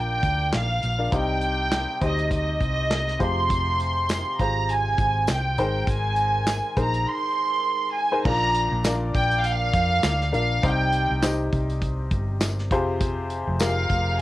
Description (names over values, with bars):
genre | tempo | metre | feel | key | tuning
piano-driven pop | 101 BPM | 4/4 | swing 56% on 16ths | unclear | A4 = 440 Hz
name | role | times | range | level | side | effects
warm chamber violin section | melody | 0.0-14.2 s | Eb5 to C6 | -24 LUFS | right 1 dB | cassette tape
warm upright piano | accompaniment | 0.0-14.2 s | Ab2 to F5 | -29 LUFS | left 2 dB | none
hollow-body short-scale fingered electric bass | bass | 0.0-14.2 s | F1 to F2 | -26 LUFS | equal | none
natural country drum kit | drums | 0.2-14.1 s | crash cymbal, handclaps, hi-hat, kick drum, snare drum | -27 LUFS | equal | cassette tape
tambourine | percussion | 4.1-13.8 s | none | -37 LUFS | left 5 dB | none
room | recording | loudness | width
light reverb | home recording on cassette | -21 LUFS | side -16 dB against mid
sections
0.0-8.3 A section; 8.3-14.2 B section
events
none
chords
0.0 Bb; 1.1 Cm; 3.2 Fmadd9; 5.6 Abadd9; 8.3 Bb; 10.6 Cm; 12.7 Fmadd9